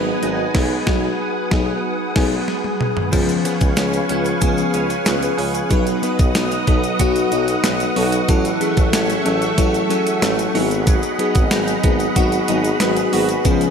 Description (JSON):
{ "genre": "1980s-style pop", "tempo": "93 BPM", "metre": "4/4", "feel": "straight", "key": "unclear", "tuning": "A4 = 442 Hz", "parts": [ { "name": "FM electric piano with soft pad layer", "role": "accompaniment", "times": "0.0-13.7 s", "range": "E#3 to G#5", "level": "-20 LUFS", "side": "left 3 dB", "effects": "chorus" }, { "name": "soft string machine", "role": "sustained chords", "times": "0.0-13.7 s", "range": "G#4 to D#6", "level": "-24 LUFS", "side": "equal", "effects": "ensemble chorus" }, { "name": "direct-recorded clean electric guitar", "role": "riff", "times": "0.0-13.7 s", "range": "E3 to G#4", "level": "-26 LUFS", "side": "right 6 dB", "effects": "analog chorus, digital delay" }, { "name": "clear tuba", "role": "bass", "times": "0.0-13.7 s", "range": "G#1 to C#2", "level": "-24 LUFS", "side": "equal", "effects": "none" }, { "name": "clean 12-bit digital drum machine", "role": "drums", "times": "0.2-13.7 s", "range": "crash cymbal, hi-hat, kick drum, snare drum, toms", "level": "-20 LUFS", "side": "equal", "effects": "none" }, { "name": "egg shaker", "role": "percussion", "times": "3.1-13.7 s", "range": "none", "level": "-35 LUFS", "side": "left 9 dB", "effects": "none" } ], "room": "moderate lush hall reverb, RT60 1.9 s", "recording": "none", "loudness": "-16 LUFS", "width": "side -7 dB against mid", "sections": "0.0-3.1 A section; 3.1-13.7 B section", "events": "band accent 0.5-3.1; FM electric piano fill 1.8-3.1; drum fill 2.5-3.1", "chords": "0.0 G#m7; 0.5 B6; 3.1 C#7; 5.7 B; 8.3 F#m7/A; 10.5 G#m7" }